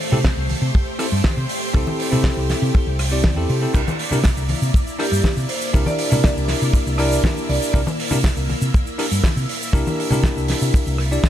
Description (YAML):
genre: nu-disco, nu disco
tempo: 120 BPM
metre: 4/4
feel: straight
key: C mixolydian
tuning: A4 = 440 Hz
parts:
  - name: string machine, full ensemble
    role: sustained chords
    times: 0.0-11.3 s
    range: A3 to E5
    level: -28 LUFS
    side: equal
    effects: ensemble chorus, sidechain pumping
  - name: damped 70s drum kit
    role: drums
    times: 0.0-11.3 s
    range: crash cymbal, hi-hat, rim click, shaker, snare drum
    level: -25 LUFS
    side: right 2 dB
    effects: studio ambience
  - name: bell-like tine electric piano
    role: accompaniment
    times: 0.1-11.3 s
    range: C4 to D5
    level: -25 LUFS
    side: left 1 dB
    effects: sidechain pumping, ping-pong delay
  - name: hollow-body short-scale fingered electric bass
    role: bass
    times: 0.1-11.2 s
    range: C2 to C3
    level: -21 LUFS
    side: equal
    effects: none
  - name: congas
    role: percussion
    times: 0.1-11.3 s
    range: none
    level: -26 LUFS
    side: left 2 dB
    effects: none
  - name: kick drum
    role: drums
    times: 0.2-11.3 s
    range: none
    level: -18 LUFS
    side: equal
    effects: studio ambience
  - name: vibraphone with medium hard mallets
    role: melody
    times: 5.0-7.7 s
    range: G4 to D5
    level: -28 LUFS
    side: right 2 dB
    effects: ping-pong delay
room: small room ambience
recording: none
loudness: -17 LUFS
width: side -11 dB against mid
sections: 0.0-11.3 A section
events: none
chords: 0.0 Am7/C; 3.7 C9